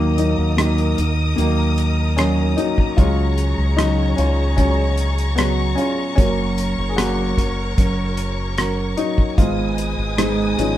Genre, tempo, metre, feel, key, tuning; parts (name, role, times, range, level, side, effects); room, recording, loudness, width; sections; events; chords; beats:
pop ballad; 75 BPM; 4/4; straight; Eb minor; A4 = 440 Hz
warm baby grand piano; accompaniment; 0.0-10.8 s; Eb3 to Ab4; -22 LUFS; left 2 dB
dark symphonic string section; sustained chords; 0.0-10.8 s; Ab4 to Eb6; -27 LUFS; left 1 dB
nylon-string guitar; arpeggios; 0.0-10.8 s; Ab2 to Bb4; -25 LUFS; right 4 dB
fingered electric bass; bass; 0.0-10.8 s; Gb1 to Eb2; -20 LUFS; equal
damped 70s drum kit; drums; 0.2-10.8 s; hi-hat, kick drum, rim click; -19 LUFS; equal
moderate studio reverb, RT60 0.8 s; band playing live in one room; -16 LUFS; side -13 dB against mid
0.0-10.8 A section
grand piano solo 0.0-10.8
0.0 Ebm; 3.0 Dbsus4; 6.2 Gb; 9.4 Abm
0.58 1.38 2.18 | 2.98 3.78 4.58 5.38 | 6.18 6.98 7.78 8.58 | 9.38 10.18